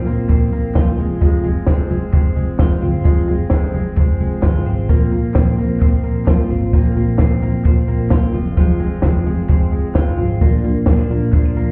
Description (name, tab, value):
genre	jangly indie pop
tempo	130 BPM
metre	4/4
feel	straight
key	unclear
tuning	A4 = 439 Hz
part	picked steel-string acoustic guitar	accompaniment	0.0-11.7 s	F2 to F4	-25 LUFS	equal	none
part	twelve-string electric guitar	arpeggios	0.0-11.7 s	F3 to F4	-26 LUFS	equal	spring reverb, tape echo
part	vintage muted picked electric bass	bass	0.0-11.7 s	F1 to C2	-21 LUFS	equal	none
part	compact cocktail drum kit	drums	0.1-11.7 s	hi-hat, kick drum, ride cymbal, snare drum	-17 LUFS	equal	none
part	group handclap	percussion	0.3-11.4 s	none	-47 LUFS	equal	none
room	small room ambience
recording	heard muffled through a wall, club reverb, EQ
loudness	-16 LUFS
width	mono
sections	0.0-11.7 A section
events	none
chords	0.0 Bbsus2; 1.0 Fm; 4.9 Bbsus2; 8.3 Fm; 10.4 Bb